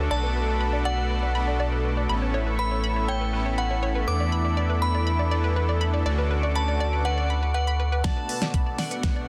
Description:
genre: progressive house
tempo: 121 BPM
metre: 4/4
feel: straight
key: B minor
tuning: A4 = 439 Hz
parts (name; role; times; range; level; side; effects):
- lush unison pad; sustained chords; 0.0-9.3 s; B2 to D6; -36 LUFS; equal; chorus, sidechain pumping
- analog pluck; arpeggios; 0.0-9.2 s; B4 to B5; -35 LUFS; equal; chorus, sidechain pumping, tape echo
- soft supersaw; stabs; 0.0-9.3 s; A2 to A4; -33 LUFS; equal; sidechain pumping, low-pass filter, tape echo
- round analog bass; bass; 0.0-8.0 s; A1 to E2; -27 LUFS; equal; tube saturation, sidechain pumping
- glassy synth bell; melody; 0.1-9.3 s; D5 to D6; -33 LUFS; equal; chorus, sidechain pumping, tape echo
- airy dreamy lead; second line; 8.0-9.3 s; F#5 to A5; -41 LUFS; equal; chorus, sidechain pumping, tape echo
- electronic kick drum; drums; 8.0-9.1 s; none; -27 LUFS; equal; none
- pop drum kit; drums; 8.0-9.1 s; hi-hat, snare drum; -32 LUFS; equal; sidechain pumping on hats
- riser; sound effects; 9.0-9.3 s; none; -51 LUFS; equal; none
room: light reverb, digital ambience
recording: dense, heavily limited modern master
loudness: -25 LUFS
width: mono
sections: 0.0-8.0 A section; 8.0-9.3 B section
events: build-up 8.0-9.3; drum fill 8.0-9.3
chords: 0.1 Bm7; 2.1 Aadd9; 4.1 E7sus4; 6.1 Dmaj7; 8.0 Bm7

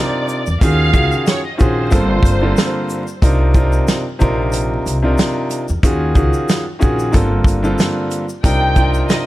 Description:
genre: hip hop, boom-bap hip-hop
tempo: 92 BPM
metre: 4/4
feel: swing 56% on 16ths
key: C minor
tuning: A4 = 440 Hz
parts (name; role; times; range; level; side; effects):
- rich studio violin section; melody; 0.0-3.2, 8.4-9.3 s; C5 to G5; -21 LUFS; right 1 dB; high-pass filter, low-pass filter, ping-pong delay
- clear grand piano; accompaniment; 0.0-9.2 s; G2 to Bb4; -18 LUFS; equal; high-pass filter, low-pass filter
- warm soul drum kit; drums; 0.3-9.3 s; hi-hat, kick drum, shaker, snare drum; -15 LUFS; equal; none
- tube shaker; percussion; 0.3-9.3 s; none; -38 LUFS; left 7 dB; none
- upright bass; bass; 0.5-9.0 s; G1 to E2; -18 LUFS; equal; none
room: small room reverb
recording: vinyl crackle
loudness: -13 LUFS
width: side -16 dB against mid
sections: 0.0-9.3 A section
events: none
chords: 0.0 Cm11; 0.6 Ebm11; 1.9 Gm11; 3.2 Cm11; 5.8 Ebm11; 7.1 Gm11; 8.4 Cm11

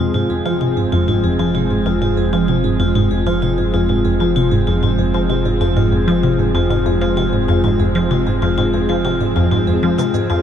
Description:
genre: ambient, sequencer-driven space music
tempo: 96 BPM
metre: 4/4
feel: straight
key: F minor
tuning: A4 = 440 Hz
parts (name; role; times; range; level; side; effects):
- lush unison pad; sustained chords; 0.0-10.4 s; F3 to Ab4; -20 LUFS; right 2 dB; chorus
- vibraphone with hard mallets; arpeggios; 0.0-10.4 s; F4 to Ab4; -21 LUFS; left 3 dB; auto-pan, ping-pong delay
- resonant blip pluck; riff; 0.0-10.4 s; F2 to F3; -17 LUFS; equal; phaser, ping-pong delay
- warm sub bass; bass; 0.0-10.4 s; F1; -24 LUFS; equal; none
- bongos and cabasa; percussion; 10.0-10.3 s; none; -34 LUFS; equal; ping-pong delay
room: wet huge ambient reverb, RT60 7.2 s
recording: dark, warm production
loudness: -14 LUFS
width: side -9 dB against mid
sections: 0.0-10.4 A section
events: none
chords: 0.0 Fm

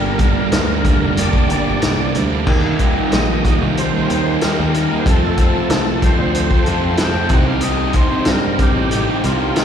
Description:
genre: classic rock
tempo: 93 BPM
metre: 4/4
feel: straight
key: C dorian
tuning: A4 = 440 Hz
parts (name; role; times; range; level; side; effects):
- overdriven tonewheel organ; melody; 0.0-9.6 s; F4 to Eb5; -25 LUFS; equal; slow rotary speaker, chorus vibrato, slapback echo
- bright tonewheel organ; sustained chords; 0.0-9.6 s; G3 to Bb4; -32 LUFS; left 1 dB; none
- overdriven electric guitar; riff; 0.0-9.6 s; F2 to Eb4; -20 LUFS; right 12 dB; slapback echo
- overdriven semi-hollow guitar; riff; 0.0-9.6 s; G2 to A4; -21 LUFS; left 9 dB; spring reverb, slapback echo
- picked electric bass; bass; 0.0-9.5 s; F1 to G2; -20 LUFS; equal; none
- vintage drum kit; drums; 0.2-9.6 s; crash cymbal, hi-hat, kick drum, snare drum; -18 LUFS; equal; none
- octave-fuzz lead guitar; second line; 7.0-8.3 s; C5 to G5; -25 LUFS; left 4 dB; distortion, slapback echo
room: small room reverb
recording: live gig heard through the venue's PA, recital hall reverb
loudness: -14 LUFS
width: side -8 dB against mid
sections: 0.0-9.6 A section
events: none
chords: 0.0 Gm; 2.5 Eb; 5.1 F; 7.3 Cm

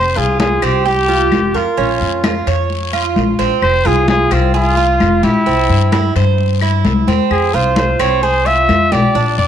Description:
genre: latin, Cuban son and guajira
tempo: 130 BPM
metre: 4/4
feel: straight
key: F harmonic minor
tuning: A4 = 436 Hz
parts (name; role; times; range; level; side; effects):
- warm trumpet; melody; 0.0-9.5 s; E4 to E5; -16 LUFS; left 1 dB; none
- upright bass; bass; 0.0-9.5 s; F1 to G2; -17 LUFS; left 2 dB; none
- Cuban tres; arpeggios; 0.2-9.5 s; C4 to Db5; -17 LUFS; right 9 dB; slapback echo
- congas; percussion; 0.2-9.5 s; none; -19 LUFS; left 3 dB; none
- guiro; percussion; 0.4-9.5 s; none; -29 LUFS; left 16 dB; none
- claves; percussion; 0.6-8.9 s; none; -28 LUFS; left 15 dB; none
room: light reverb, studio ambience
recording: 1960s-style stereo with parts hard left and right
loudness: -11 LUFS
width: side -9 dB against mid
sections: 0.0-9.5 A section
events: none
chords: 0.0 Fsus2; 1.8 Bbm; 3.6 Fm; 5.5 C; 7.3 Fm

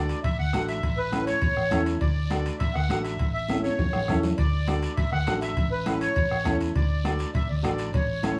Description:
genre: latin, cumbia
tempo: 202 BPM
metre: 4/4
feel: straight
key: D major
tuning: A4 = 442 Hz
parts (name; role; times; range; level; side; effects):
- accordion; melody; 0.0-8.4 s; B4 to F#5; -32 LUFS; equal; light tremolo tuning, plate reverb
- clear upright piano; accompaniment; 0.0-8.4 s; C#4 to A4; -32 LUFS; equal; none
- vintage muted fingered electric bass; bass; 0.0-8.4 s; A1 to E2; -30 LUFS; equal; none
- guiro; percussion; 0.1-8.4 s; none; -46 LUFS; equal; none
- timbales; percussion; 0.1-8.4 s; none; -40 LUFS; equal; none
- bombo; percussion; 0.2-8.4 s; none; -32 LUFS; equal; none
- congas; percussion; 0.2-8.4 s; none; -39 LUFS; equal; none
room: moderate studio reverb, RT60 0.8 s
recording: none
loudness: -26 LUFS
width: mono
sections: 0.0-8.4 A section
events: drum fill 3.5-4.4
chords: 0.0 D; 0.8 A; 2.0 D; 3.2 A; 4.4 D; 5.6 A; 6.8 D

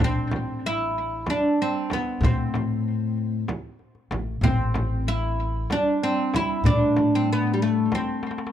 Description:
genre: Turkish makam ensemble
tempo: 190 BPM (eighths)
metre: 7/8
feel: straight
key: A makam nihavent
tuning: A4 = 439 Hz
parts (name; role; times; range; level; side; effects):
- oud; melody; 0.0-8.5 s; G3 to E4; -24 LUFS; right 1 dB; tape echo
- upright bass; bass; 0.0-7.9 s; A1 to A2; -26 LUFS; left 2 dB; none
- darbuka; percussion; 0.0-8.5 s; none; -29 LUFS; left 3 dB; none
- frame drum; percussion; 0.0-8.1 s; none; -27 LUFS; right 1 dB; none
room: studio reverb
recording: dry, close 1970s-style studio recording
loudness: -22 LUFS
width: side -10 dB against mid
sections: 0.0-8.5 A section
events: drum fill 8.2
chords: none

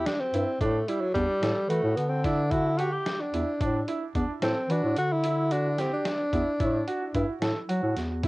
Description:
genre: progressive instrumental, band music in an uneven meter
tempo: 220 BPM (eighths)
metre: 11/8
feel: straight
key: unclear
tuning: A4 = 438 Hz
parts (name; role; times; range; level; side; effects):
- breathy tenor saxophone; melody; 0.0-7.2 s; F#3 to G4; -28 LUFS; equal; cassette tape
- clear concert grand piano; arpeggios; 0.0-8.3 s; D4 to A4; -33 LUFS; right 3 dB; cassette tape, analog delay
- mellow bass clarinet; bass; 0.0-8.3 s; E2 to F#3; -28 LUFS; equal; none
- trip hop sampler-style drum kit; drums; 0.1-8.3 s; hi-hat, kick drum, snare drum; -33 LUFS; equal; none
room: light reverb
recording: home recording on cassette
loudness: -24 LUFS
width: side -21 dB against mid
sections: 0.0-8.3 A section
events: tenor saxophone solo 0.0-8.3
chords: 0.0 Am7 (rootless); 0.6 Gsus2 (rootless); 6.6 A5

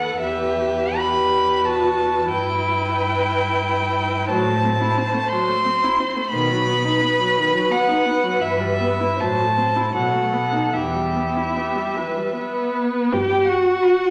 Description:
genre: classical, slow romantic movement for string quartet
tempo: 73-94 BPM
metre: 3/4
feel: rubato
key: E minor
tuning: A4 = 438 Hz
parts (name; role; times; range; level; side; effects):
- rich violin; melody; 0.0-14.1 s; E5 to C6; -24 LUFS; equal; none
- warm violin; second line; 0.0-14.1 s; G4 to G5; -28 LUFS; equal; none
- warm viola; accompaniment; 0.0-14.1 s; D#3 to A4; -24 LUFS; equal; none
- rich cello; bass; 0.0-13.7 s; D#2 to B2; -30 LUFS; equal; none
room: wet recital hall reverb, RT60 1.4 s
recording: none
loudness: -20 LUFS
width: mono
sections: 0.0-13.1 A section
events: none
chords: 0.2 Em; 2.3 Em/G; 4.3 F#m7b5/A; 6.3 B; 8.4 Em/G; 9.2 F#m7b5/A; 10.0 B7; 10.7 Em; 13.1 G

